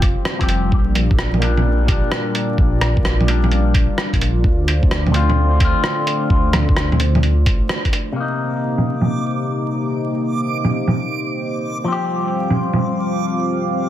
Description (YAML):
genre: future garage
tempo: 129 BPM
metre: 4/4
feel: swing 66% on 16ths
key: C dorian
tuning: A4 = 441 Hz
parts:
  - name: dark analog pad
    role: sustained chords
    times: 0.0-13.9 s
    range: G3 to F5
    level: -24 LUFS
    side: equal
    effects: chorus, sidechain pumping
  - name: dark detuned saw bass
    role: bass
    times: 0.0-7.6 s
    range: F1 to D2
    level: -18 LUFS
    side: equal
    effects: tube saturation, sidechain pumping
  - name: electronic kick drum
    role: drums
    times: 0.0-7.9 s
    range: none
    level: -17 LUFS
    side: equal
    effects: none
  - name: lo-fi sampler-style drum kit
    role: drums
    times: 0.0-12.8 s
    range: bongos, hi-hat, rim click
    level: -20 LUFS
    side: right 1 dB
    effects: low-pass filter on hats, soft clipping on snare, low-pass filter on snare, low-pass filter on perc, low-pass filter on room
  - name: electric guitar with an envelope filter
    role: accompaniment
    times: 0.4-13.9 s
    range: Bb2 to G4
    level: -23 LUFS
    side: left 3 dB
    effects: sidechain pumping, dub echo
  - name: backwards swelling texture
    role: texture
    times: 9.0-13.9 s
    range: D6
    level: -28 LUFS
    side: right 6 dB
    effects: built-in reverb
room: light reverb, digital ambience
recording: dense, heavily limited modern master, vinyl crackle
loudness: -15 LUFS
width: side -12 dB against mid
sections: 0.0-8.2 A section; 8.2-13.9 B section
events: band accent 7.7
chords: 0.0 Fsus2; 0.7 Bb6; 4.4 Dm7; 8.2 Cm7; 11.9 Fsus2